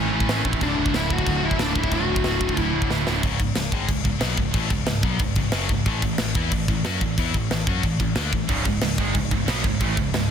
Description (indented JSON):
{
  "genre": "heavy metal",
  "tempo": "183 BPM",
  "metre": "4/4",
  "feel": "straight",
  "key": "C# phrygian",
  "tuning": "A4 = 435 Hz",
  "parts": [
    { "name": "high-gain lead guitar", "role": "melody", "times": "0.0-2.9 s", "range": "C#4 to F#4", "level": "-26 LUFS", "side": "left 4 dB", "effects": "distortion" },
    { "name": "distorted electric guitar", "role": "riff", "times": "0.0-10.3 s", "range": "C#2 to F#4", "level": "-30 LUFS", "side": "left 13 dB", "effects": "overdrive" },
    { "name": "scooped high-gain guitar", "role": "riff", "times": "0.0-3.2, 8.5-10.3 s", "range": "C#2 to B3", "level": "-27 LUFS", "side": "right 13 dB", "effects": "distortion" },
    { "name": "scooped high-gain guitar", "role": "riff", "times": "0.0-10.3 s", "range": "C#2 to F#4", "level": "-28 LUFS", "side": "equal", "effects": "distortion" },
    { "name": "picked electric bass", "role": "bass", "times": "0.0-10.3 s", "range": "C#1 to F#2", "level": "-28 LUFS", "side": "equal", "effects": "none" },
    { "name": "tight metal drum kit", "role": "drums", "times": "0.2-10.2 s", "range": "china cymbal, crash cymbal, kick drum, snare drum", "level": "-24 LUFS", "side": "equal", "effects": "none" }
  ],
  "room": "small room ambience",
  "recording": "dense, heavily limited modern master",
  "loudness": "-20 LUFS",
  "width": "side -8 dB against mid",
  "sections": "0.0-3.2 A section; 3.2-10.3 B section",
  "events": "drum fill 2.9-3.2",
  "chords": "0.0 A; 0.6 D; 3.2 C#m; 5.9 A5; 8.5 C#m"
}